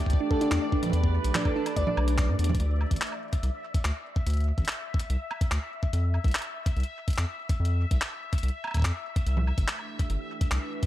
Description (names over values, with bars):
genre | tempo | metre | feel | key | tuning
IDM | 144 BPM | 4/4 | straight | unclear | A4 = 439 Hz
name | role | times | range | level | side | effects
warbly tape-like pad | sustained chords | 0.0-2.6, 9.3-10.9 s | E3 to B4 | -35 LUFS | right 2 dB | chorus, built-in reverb
bubbling stepped-filter texture | texture | 0.0-10.9 s | D5 to E5 | -39 LUFS | left 2 dB | chorus, built-in reverb
round analog bass | bass | 0.1-10.6 s | G1 to G2 | -26 LUFS | equal | none
electronic kick drum | drums | 0.1-10.9 s | none | -26 LUFS | equal | none
jungle sampler-style drum kit | drums | 0.1-10.9 s | congas, handclaps, hi-hat, woodblock | -33 LUFS | right 1 dB | ping-pong delay
harp-like synth pluck | arpeggios | 0.2-1.9 s | D4 to D5 | -30 LUFS | right 1 dB | chorus, digital delay
room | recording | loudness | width
digital ambience | dark, warm production | -25 LUFS | side -14 dB against mid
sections
0.0-2.6 A section; 2.6-10.9 B section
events
drum fill 2.4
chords
0.0 Em7; 2.6 D5; 5.9 F5; 9.3 Cmaj7